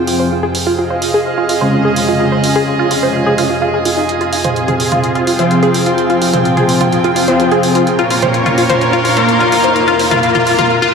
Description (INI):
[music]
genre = melodic techno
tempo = 127 BPM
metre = 4/4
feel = straight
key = F minor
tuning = A4 = 440 Hz
[part]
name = lush unison pad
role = sustained chords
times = 0.0-10.7 s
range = F2 to F5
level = -19 LUFS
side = right 1 dB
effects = chorus
[part]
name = tight sequenced synth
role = arpeggios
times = 0.0-10.9 s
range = Eb4 to C5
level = -15 LUFS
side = equal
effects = chorus, tape echo
[part]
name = analog synth brass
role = stabs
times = 0.0-10.7 s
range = Db3 to Bb4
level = -15 LUFS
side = left 2 dB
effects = chorus, tape echo
[part]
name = bowed-like drone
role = drone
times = 0.0-10.7 s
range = F2 to C3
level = -26 LUFS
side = right 1 dB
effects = built-in reverb
[part]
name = warm chamber string section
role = texture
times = 0.0-10.7 s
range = F4 to C6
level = -21 LUFS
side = right 2 dB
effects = none
[part]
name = punchy analog drum machine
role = drums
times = 0.1-10.7 s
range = hi-hat, toms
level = -21 LUFS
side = right 1 dB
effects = none
[part]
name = riser and reverse cymbal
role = sound effects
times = 5.3-10.9 s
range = none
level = -24 LUFS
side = right 1 dB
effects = none
[sound]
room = wet lush hall reverb, RT60 2.3 s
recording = dreamy mix soaked in reverb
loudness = -10 LUFS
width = side -6 dB against mid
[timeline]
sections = 0.0-10.9 A section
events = build-up 0.0-10.9; filter sweep on synth arpeggio sound 0.0-10.9; filter sweep on analog polysynth 0.0-10.9; riser 5.3-10.7; reverse cymbal 10.7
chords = 0.3 Db; 4.1 Fm; 7.9 Bbm